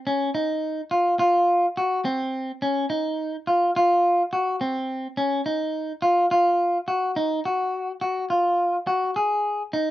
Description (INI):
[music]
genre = progressive instrumental, progressive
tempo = 211 BPM (eighths)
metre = 9/8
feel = straight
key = Eb dorian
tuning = A4 = 442 Hz
[part]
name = clean electric guitar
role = solo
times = 0.1-9.9 s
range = C4 to Ab4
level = -21 LUFS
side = equal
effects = slapback echo
[sound]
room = little or no reverb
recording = recorded outdoors, with no room sound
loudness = -21 LUFS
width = side -14 dB against mid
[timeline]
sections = 0.0-7.2 A section; 7.2-9.9 B section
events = none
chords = none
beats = 0.07 0.35 0.63 0.92 1.20 1.48 1.77 | 2.05 2.34 2.62 2.90 3.19 3.47 3.75 4.04 4.32 | 4.61 4.89 5.18 5.46 5.74 6.03 6.31 6.60 6.88 | 7.17 7.45 7.73 8.02 8.30 8.59 8.87 9.16 9.44 | 9.73